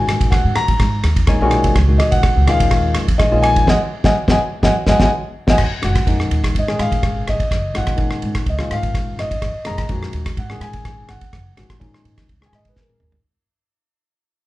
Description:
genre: electric jazz fusion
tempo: 125 BPM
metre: 4/4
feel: swing 53% on 16ths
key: unclear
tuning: A4 = 440 Hz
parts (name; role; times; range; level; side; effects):
- dark concert grand piano; melody; 0.0-13.1 s; A#4 to A#5; -21 LUFS; left 1 dB; none
- barky tine electric piano; accompaniment; 0.0-13.2 s; A#2 to G#5; -22 LUFS; left 2 dB; none
- upright bass; bass; 0.0-13.2 s; F#1 to C#3; -20 LUFS; equal; none
- damped 70s drum kit; drums; 0.1-13.2 s; crash cymbal, kick drum, ride cymbal, rim click, snare drum, toms; -18 LUFS; equal; none
room: light reverb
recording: band playing live in one room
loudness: -14 LUFS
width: side -17 dB against mid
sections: 0.0-5.6 A section; 5.6-13.2 B section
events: tine electric piano fill 1.0-1.8; band accent 3.7-5.6; drum fill 5.4, 12.8-13.2; fade-out 5.6-13.2; grand piano solo 5.6-13.2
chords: 0.0 G#m9; 1.8 C#sus24; 2.5 D#9sus4; 3.7 G#m7; 5.6 G#sus2

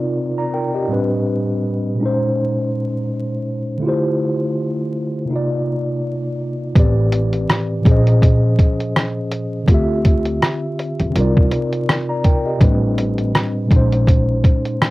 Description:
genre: lo-fi hip hop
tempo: 82 BPM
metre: 4/4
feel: swing 58% on 16ths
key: unclear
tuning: A4 = 440 Hz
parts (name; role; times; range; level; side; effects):
- mellow tine electric piano; accompaniment; 0.0-14.9 s; A2 to Bb5; -19 LUFS; equal; medium stereo tremolo, cassette tape
- upright bass; bass; 6.8-14.4 s; A1 to E2; -17 LUFS; equal; none
- lo-fi sampler-style drum kit; drums; 6.8-14.9 s; hi-hat, kick drum, rim click; -14 LUFS; equal; cassette tape
room: moderate booth ambience, RT60 0.2 s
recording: home recording on cassette, vinyl crackle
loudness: -15 LUFS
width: side -19 dB against mid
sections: 0.0-14.9 A section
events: none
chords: 0.0 Cm11; 0.9 Am11; 2.0 Bbm11; 3.8 Dm11; 5.3 Cm11; 6.8 Am11; 7.8 Bbm11; 9.7 Dm11; 11.1 Cm11; 12.6 Am11; 13.7 Bbm11

